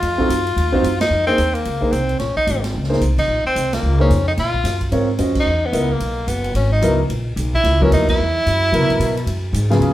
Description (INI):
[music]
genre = modal jazz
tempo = 220 BPM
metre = 4/4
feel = swing 61% on 8ths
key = Bb phrygian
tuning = A4 = 440 Hz
[part]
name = bright tenor saxophone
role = melody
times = 0.0-9.5 s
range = Bb3 to E#4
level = -20 LUFS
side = equal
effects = plate reverb
[part]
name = upright bass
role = bass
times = 0.0-9.9 s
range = Gb1 to Db3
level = -19 LUFS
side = equal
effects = none
[part]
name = swinging big-band drum kit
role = drums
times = 0.0-9.9 s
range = crash cymbal, hi-hat, kick drum, ride cymbal, snare drum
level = -27 LUFS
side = right 1 dB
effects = none
[part]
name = warm concert grand piano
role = accompaniment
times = 0.2-9.9 s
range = Db3 to Eb5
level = -20 LUFS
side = equal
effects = none
[sound]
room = wet studio reverb, RT60 0.9 s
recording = heard from further back in the room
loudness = -15 LUFS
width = side -14 dB against mid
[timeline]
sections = 0.0-1.1 A section; 1.1-9.8 B section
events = band accent 1.0, 3.1, 5.3, 8.0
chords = 0.0 F7(no3); 1.1 Bbm11; 5.5 Dbm11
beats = | 0.02 0.29 0.56 0.83 | 1.11 1.38 1.65 1.92 | 2.19 2.47 2.74 3.01 | 3.29 3.56 3.83 4.10 | 4.37 4.65 4.92 5.19 | 5.46 5.74 6.01 6.28 | 6.55 6.83 7.10 7.37 | 7.64 7.91 8.18 8.46 | 8.73 9.00 9.27 9.54 | 9.82